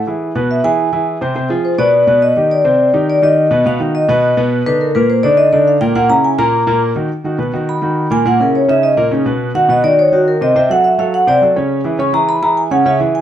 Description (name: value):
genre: jazz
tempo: 209 BPM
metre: 4/4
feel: straight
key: B major from 7.1 s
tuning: A4 = 437 Hz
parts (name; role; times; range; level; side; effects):
- warm concert grand piano; accompaniment; 0.1-13.2 s; Bb2 to C#5; -15 LUFS; equal; none
- vibraphone with medium mallets; melody; 0.5-13.2 s; F#4 to C#6; -12 LUFS; equal; none
room: moderate large studio reverb, RT60 0.9 s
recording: dark, warm production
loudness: -11 LUFS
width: side -10 dB against mid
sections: 0.0-7.1 A section; 7.1-13.2 A section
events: vibraphone solo 0.0-13.2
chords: 0.2 E; 1.4 Bdim7; 1.9 G; 2.5 Cmadd9; 3.7 B; 4.2 Bm; 4.8 Eb5; 6.0 Gb6 (rootless); 7.1 Bmaj7; 8.3 A#dim; 8.8 D#5; 9.4 B; 10.6 D9/C (rootless); 11.7 C#m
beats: | 0.21 0.50 0.78 1.07 | 1.36 1.65 1.93 2.22 | 2.51 2.79 3.08 3.37 | 3.65 3.94 4.23 4.52 | 4.80 5.09 5.38 5.67 | 5.95 6.24 6.53 6.82 | 7.10 7.39 7.68 7.96 | 8.25 8.54 8.83 9.12 | 9.40 9.69 9.98 10.27 | 10.55 10.84 11.13 11.42 | 11.70 11.99 12.28 12.57 | 12.86 13.14